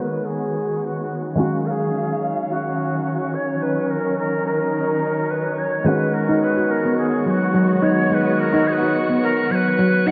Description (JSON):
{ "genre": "downtempo", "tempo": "107 BPM", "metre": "4/4", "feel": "swing 54% on 16ths", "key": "G# dorian", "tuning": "A4 = 439 Hz", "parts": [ { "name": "breathy bright Native American-style cedar flute", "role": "melody", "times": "0.0-10.1 s", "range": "F#4 to F#5", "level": "-26 LUFS", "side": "equal", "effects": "digital delay" }, { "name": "felt-muted upright piano", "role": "accompaniment", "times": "0.0-10.1 s", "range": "D#3 to F#4", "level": "-28 LUFS", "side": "equal", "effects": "lush chorus" }, { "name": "dark chamber string section", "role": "sustained chords", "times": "0.0-10.1 s", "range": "D#3 to E#5", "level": "-27 LUFS", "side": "equal", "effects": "none" }, { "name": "drifting glass-harmonics texture", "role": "texture", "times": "0.0-10.1 s", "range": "C#5", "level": "-35 LUFS", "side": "equal", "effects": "chorus, built-in reverb" }, { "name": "handpan", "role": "arpeggios", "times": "5.9-10.1 s", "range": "F#3 to F#4", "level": "-21 LUFS", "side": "equal", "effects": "none" } ], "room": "moderate lush hall reverb, RT60 2.4 s", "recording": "bright 1980s-style digital production, low-pass filter", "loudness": "-20 LUFS", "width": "mono", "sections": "0.0-10.1 A section", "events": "filter sweep 0.0-10.1", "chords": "0.0 G#m7; 1.4 D#m9; 5.9 G#m7", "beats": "0.26 0.82 | 1.38 1.94 2.50 3.06 | 3.62 4.18 4.74 5.30 | 5.86 6.42 6.98 7.54 | 8.11 8.67 9.23 9.79" }